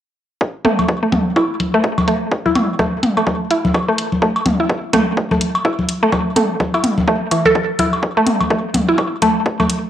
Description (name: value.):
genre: minimal techno.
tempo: 126 BPM.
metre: 4/4.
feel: swing 59% on 16ths.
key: unclear.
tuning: A4 = 440 Hz.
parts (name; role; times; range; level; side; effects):
electronic kick drum; drums; 0.4-9.6 s; none; -20 LUFS; equal; high-pass filter on kick, small room ambience, cassette tape.
mallet-like synth pluck; riff; 0.6-9.7 s; E3 to A4; -17 LUFS; equal; chorus, phaser, vintage 12-bit sampler grit, sidechain pumping, cassette tape, tape echo.
electronic hi-hat; drums; 0.6-9.8 s; none; -24 LUFS; left 1 dB; low-pass filter on hats, small room ambience, cassette tape.
electronic toms, cowbell and congas; percussion; 0.6-9.7 s; none; -18 LUFS; left 1 dB; small room ambience, cassette tape, tape echo.
room: wet digital room reverb, RT60 1.2 s.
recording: home recording on cassette.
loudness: -14 LUFS.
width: side -10 dB against mid.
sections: 0.4-9.9 A section.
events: none.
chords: none.